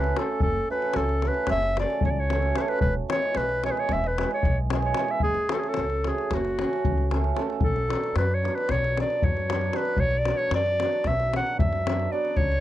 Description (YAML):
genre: balkan folk, Balkan wedding band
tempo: 226 BPM (eighths)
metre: 9/8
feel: straight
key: unclear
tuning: A4 = 440 Hz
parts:
  - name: clear clarinet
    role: melody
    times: 0.0-12.6 s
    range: F#4 to F#5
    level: -26 LUFS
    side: equal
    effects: none
  - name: hammered dulcimer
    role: accompaniment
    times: 0.0-12.4 s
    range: F#3 to A4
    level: -31 LUFS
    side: right 8 dB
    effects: none
  - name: upright bass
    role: bass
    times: 0.0-12.6 s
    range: E1 to F#2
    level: -28 LUFS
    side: equal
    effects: none
  - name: davul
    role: percussion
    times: 0.0-12.6 s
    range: none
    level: -29 LUFS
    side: left 3 dB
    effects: none
room: light reverb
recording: dry, close 1970s-style studio recording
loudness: -22 LUFS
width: side -13 dB against mid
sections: 0.0-7.6 A section; 7.6-12.6 B section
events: none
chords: 0.0 F#m; 2.8 E; 5.2 F#m; 7.6 Bm